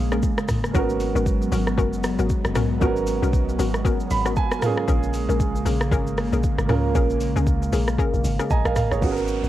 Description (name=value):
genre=amapiano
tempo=116 BPM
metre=4/4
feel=swing 58% on 16ths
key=unclear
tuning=A4 = 442 Hz
part: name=warm grand piano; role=accompaniment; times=0.0-9.5 s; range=A#3 to B5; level=-26 LUFS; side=right 6 dB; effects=cassette tape
part: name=airy breathy pad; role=sustained chords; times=0.0-9.5 s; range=C#3 to B3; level=-28 LUFS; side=equal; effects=chorus, phaser, sidechain pumping, cassette tape
part: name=hollow square pluck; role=stabs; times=0.0-8.5 s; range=B3 to A#4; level=-29 LUFS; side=left 7 dB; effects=chorus, cassette tape, analog delay
part: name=deep log drum bass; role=bass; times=0.0-9.5 s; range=F#1 to C#2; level=-24 LUFS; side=equal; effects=none
part: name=afro-pop drum kit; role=drums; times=0.1-9.5 s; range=hi-hat, kick drum, rim click, shaker, toms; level=-24 LUFS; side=equal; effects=cassette tape
part: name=downlifter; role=sound effects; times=9.0-9.5 s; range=none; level=-36 LUFS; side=equal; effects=none
room=digital ambience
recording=home recording on cassette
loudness=-19 LUFS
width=side -13 dB against mid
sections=0.0-9.0 A section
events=drop 0.0-9.0; grand piano fill 3.9-4.9, 8.2-9.0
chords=0.0 A#m7; 0.7 G#m11; 4.6 A#m7